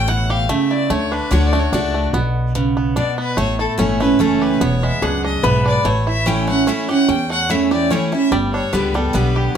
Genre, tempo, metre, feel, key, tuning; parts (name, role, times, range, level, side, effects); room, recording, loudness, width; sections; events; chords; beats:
bluegrass; 146 BPM; 3/4; straight; A4 = 440 Hz
bluegrass banjo; melody; 0.0-9.6 s; G3 to G4; -25 LUFS; right 2 dB; plate reverb
clear fiddle; melody; 0.0-9.6 s; G4 to G5; -22 LUFS; left 3 dB; plate reverb
picked steel-string acoustic guitar; accompaniment; 0.0-9.6 s; E2 to G4; -18 LUFS; right 2 dB
upright bass; bass; 0.0-9.5 s; E1 to E2; -20 LUFS; equal
lap resonator guitar; second line; 5.0-5.9 s; G#4 to B4; -21 LUFS; left 1 dB
moderate small room reverb, RT60 0.5 s; -15 LUFS; side -8 dB against mid
0.0-2.1 A section; 2.1-9.6 B section
fiddle solo 0.0-2.1
0.0 A; 0.9 D; 2.1 Bm; 3.4 A; 4.6 E7; 5.9 A; 8.3 G
0.08 0.49 | 0.90 1.31 1.73 | 2.14 2.55 2.96 | 3.38 3.79 4.20 | 4.61 5.03 5.44 | 5.85 6.26 6.67 | 7.09 7.50 7.91 | 8.32 8.73 9.15 | 9.56